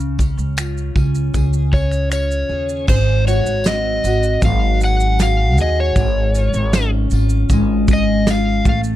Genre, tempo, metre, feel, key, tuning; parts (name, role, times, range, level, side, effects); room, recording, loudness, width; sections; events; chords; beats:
acoustic pop; 78 BPM; 4/4; straight; Db major; A4 = 440 Hz
picked steel-string acoustic guitar; accompaniment; 0.0-9.0 s; Ab2 to Ab4; -21 LUFS; left 1 dB; double-tracked left and right
upright bass; bass; 0.0-9.0 s; Ab1 to Eb2; -18 LUFS; equal
soft brush drum kit; drums; 0.0-9.0 s; crash cymbal, finger snaps, kick drum, shaker, snare drum; -19 LUFS; equal
tambourine; percussion; 0.2-8.4 s; -38 LUFS; left 8 dB
overdriven slide guitar; melody; 1.7-8.8 s; C5 to Gb5; -20 LUFS; left 1 dB
small room reverb; dark, warm production; -14 LUFS; side -13 dB against mid
0.0-2.9 A section; 2.9-9.0 B section
0.0 Db; 2.9 Ab7; 6.0 Db/Ab
0.57 1.34 2.11 | 2.88 3.65 4.42 5.19 | 5.96 6.72 7.49 8.26